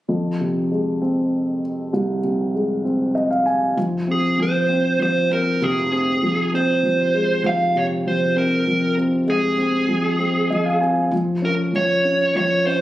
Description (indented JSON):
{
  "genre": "pop",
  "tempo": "65 BPM (dotted quarters)",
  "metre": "6/8",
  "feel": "straight",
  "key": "unclear",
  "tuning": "A4 = 440 Hz",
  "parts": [
    { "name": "dark upright piano", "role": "accompaniment", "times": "0.1-12.8 s", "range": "C2 to Ab5", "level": "-19 LUFS", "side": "equal", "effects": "none" },
    { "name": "upright bass", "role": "bass", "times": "3.8-12.8 s", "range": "F1", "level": "-35 LUFS", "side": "equal", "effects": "none" },
    { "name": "dark smooth lead guitar", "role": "melody", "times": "4.1-12.8 s", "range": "Ab4 to F5", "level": "-20 LUFS", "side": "right 2 dB", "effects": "overdrive" }
  ],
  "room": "moderate echo chamber reverb, RT60 1.5 s, studio reverb",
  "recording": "recorded on a phone in the room, club reverb, compression, nothing above 10.8 kHz",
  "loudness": "-17 LUFS",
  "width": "side -14 dB against mid",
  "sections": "0.1-3.8 A section; 3.8-12.8 B section",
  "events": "upright piano fill 2.8-3.8, 10.2-11.1",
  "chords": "0.1 Fm; 11.1 Bbm/F (rootless)"
}